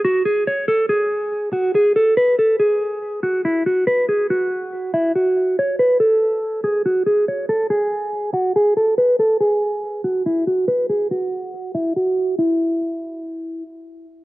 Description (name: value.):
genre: hip hop.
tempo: 141 BPM.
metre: 4/4.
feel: half-time.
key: unclear.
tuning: A4 = 441 Hz.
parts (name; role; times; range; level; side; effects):
mellow electric guitar; melody; 0.0-13.6 s; E4 to C#5; -17 LUFS; equal; phaser, low-pass filter.
room: light reverb, small room ambience.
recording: worn, warbling old tape, cassette tape, warbly pitch drift.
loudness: -16 LUFS.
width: side -18 dB against mid.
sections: 0.0-12.4 A section; 12.4-14.2 B section.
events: filter sweep on clean electric guitar 0.0-12.4.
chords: none.